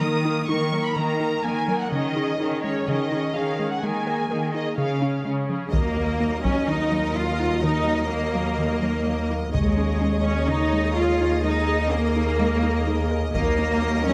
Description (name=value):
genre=cinematic, hybrid orchestral and electronic film score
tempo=126 BPM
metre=4/4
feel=straight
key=Eb minor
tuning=A4 = 440 Hz
part: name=rich symphonic violin section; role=melody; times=0.0-5.2 s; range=Db5 to Eb6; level=-31 LUFS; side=equal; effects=none
part: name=clear symphonic viola section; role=accompaniment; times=0.0-14.1 s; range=Gb3 to Db5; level=-31 LUFS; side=equal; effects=none
part: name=mallet-like synth pluck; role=arpeggios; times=0.0-14.1 s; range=Db3 to Bb4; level=-32 LUFS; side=equal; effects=chorus, phaser, digital delay
part: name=rich symphonic cello section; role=bass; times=0.0-14.1 s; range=Db3 to F4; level=-28 LUFS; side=equal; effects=none
part: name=clear symphonic violin section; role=second line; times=5.7-14.1 s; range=Eb5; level=-34 LUFS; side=equal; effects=none
part: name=rich studio double bass section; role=bass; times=5.7-14.1 s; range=Eb2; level=-28 LUFS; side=equal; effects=none
part: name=taiko ensemble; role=drums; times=5.7-6.7, 9.5-10.5, 13.4-14.1 s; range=none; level=-30 LUFS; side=equal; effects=none
room=moderate scoring stage reverb, RT60 1.9 s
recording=none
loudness=-23 LUFS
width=mono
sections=0.0-5.7 A section; 5.7-14.1 B section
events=none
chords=0.0 Ebm; 1.9 Dbsus2; 3.8 Absus2/Eb; 4.8 Db; 5.7 Ebm; 9.5 Dbsus2/Eb; 11.4 Absus2/Eb; 13.3 Ebm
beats=| 0.02 0.49 0.97 1.45 | 1.92 2.40 2.87 3.35 | 3.83 4.30 4.78 5.25 | 5.73 6.21 6.68 7.16 | 7.64 8.11 8.59 9.06 | 9.54 10.02 10.49 10.97 | 11.45 11.92 12.40 12.87 | 13.35 13.83